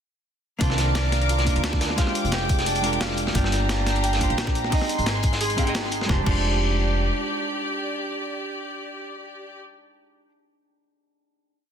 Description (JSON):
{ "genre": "liquid drum and bass", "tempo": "175 BPM", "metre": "4/4", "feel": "swing 54% on 16ths", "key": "F dorian", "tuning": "A4 = 437 Hz", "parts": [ { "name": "hollow-body jazz guitar", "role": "accompaniment", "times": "0.6-10.3 s", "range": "Eb3 to G5", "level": "-30 LUFS", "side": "right 1 dB", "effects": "tape echo" }, { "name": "bright symphonic string section", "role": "sustained chords", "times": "0.6-9.6 s", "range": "Ab3 to D6", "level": "-30 LUFS", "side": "left 2 dB", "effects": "sidechain pumping" }, { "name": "Celtic harp", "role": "arpeggios", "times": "0.6-9.1 s", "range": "D4 to Ab5", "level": "-29 LUFS", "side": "right 3 dB", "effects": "dub echo" }, { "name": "upright bass", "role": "bass", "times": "0.6-7.1 s", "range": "F1 to D2", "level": "-25 LUFS", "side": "equal", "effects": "tube saturation" }, { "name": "breakbeat sampler-style drum kit", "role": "drums", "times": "0.6-6.4 s", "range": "crash cymbal, hi-hat, snare drum", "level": "-30 LUFS", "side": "left 1 dB", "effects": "none" }, { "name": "crunchy breakbeat drum kit", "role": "drums", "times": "0.6-6.1 s", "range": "hi-hat, snare drum", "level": "-32 LUFS", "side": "equal", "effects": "high-pass filter on hats, high-pass filter on snare, high-pass filter on room" }, { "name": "electronic kick drum", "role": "drums", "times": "0.6-6.4 s", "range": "none", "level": "-24 LUFS", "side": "equal", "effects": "none" } ], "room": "light reverb, small room reverb", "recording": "dense, heavily limited modern master", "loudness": "-21 LUFS", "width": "side -8 dB against mid", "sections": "0.6-6.1 drop; 6.1-8.8 final chord", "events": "drop 0.6-6.1", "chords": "0.6 Cm11; 2.0 Fm69; 3.4 Gm7; 4.7 Abmaj7; 6.1 Fm69" }